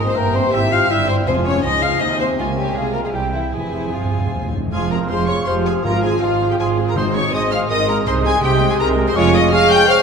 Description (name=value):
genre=quick classical-period movement for symphony orchestra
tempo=162 BPM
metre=3/4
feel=rubato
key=F minor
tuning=A4 = 440 Hz
part: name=warm chamber violin section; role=melody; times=0.0-10.0 s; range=E5 to G6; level=-25 LUFS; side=left 4 dB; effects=none
part: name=dark cor anglais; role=second line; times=0.0-10.0 s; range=Db5 to Ab5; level=-27 LUFS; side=right 3 dB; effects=none
part: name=warm chamber violin section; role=second line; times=0.0-10.0 s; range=E4 to G5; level=-22 LUFS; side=left 4 dB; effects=none
part: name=warm bassoon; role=accompaniment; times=0.0-10.0 s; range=C3 to Ab3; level=-26 LUFS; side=right 1 dB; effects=none
part: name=warm chamber viola section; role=accompaniment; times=0.0-9.3 s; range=Ab3 to Ab4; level=-26 LUFS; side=right 2 dB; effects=none
part: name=mellow French horn section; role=sustained chords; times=0.0-10.0 s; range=E3 to C5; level=-22 LUFS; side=left 2 dB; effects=none
part: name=dark chamber cello section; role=bass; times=0.0-9.5 s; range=C2 to C3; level=-24 LUFS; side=right 4 dB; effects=none
part: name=warm chamber double bass section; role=bass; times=0.0-9.5 s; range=F1 to Eb2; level=-24 LUFS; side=right 3 dB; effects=none
part: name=mellow hollow flute section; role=second line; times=0.1-10.0 s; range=E5 to F6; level=-27 LUFS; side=equal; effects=none
part: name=timpani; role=percussion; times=1.3-7.5 s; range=F2 to Ab2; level=-27 LUFS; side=left 1 dB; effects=none
part: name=warm trumpet section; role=stabs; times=4.7-10.0 s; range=F4 to G5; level=-23 LUFS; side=right 1 dB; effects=none
room=wet concert hall reverb, RT60 2.1 s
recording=minimal, uncompressed stereo recording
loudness=-15 LUFS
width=side -6 dB against mid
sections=0.0-4.7 A section; 4.7-10.0 A section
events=timpani fill 3.5-4.7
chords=0.2 C7/G; 1.3 Fm; 2.4 Db; 2.8 Fm/C; 3.1 C; 3.5 Fm; 5.9 Fm/Ab; 7.0 Ab; 8.1 Ab/C; 9.2 Db/F